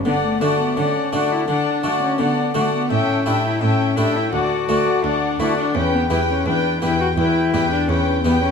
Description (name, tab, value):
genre	classical, baroque-style concerto movement with solo episodes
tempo	84 BPM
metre	4/4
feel	straight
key	D major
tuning	A4 = 440 Hz
part	dark cello	melody	0.0-8.5 s	A3 to F#4	-22 LUFS	left 3 dB	none
part	rich studio cello section	bass	0.0-8.3 s	D2 to D3	-26 LUFS	right 4 dB	none
part	warm chamber violin section	melody	0.1-8.5 s	G5 to A5	-32 LUFS	left 7 dB	none
part	warm chamber violin section	second line	0.1-8.5 s	F#5 to G5	-24 LUFS	equal	none
part	dark chamber viola section	accompaniment	0.1-8.5 s	B4 to E5	-26 LUFS	left 5 dB	none
part	harpsichord	accompaniment	0.1-8.5 s	D2 to G4	-22 LUFS	left 1 dB	none
room	moderate concert hall reverb, RT60 1.7 s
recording	none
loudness	-17 LUFS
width	side -6 dB against mid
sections	0.1-8.5 A section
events	none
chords	0.1 D; 2.9 A5; 4.3 D; 5.8 Em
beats	| 0.05 0.77 1.48 2.19 | 2.90 3.62 4.33 5.04 | 5.75 6.46 7.18 7.89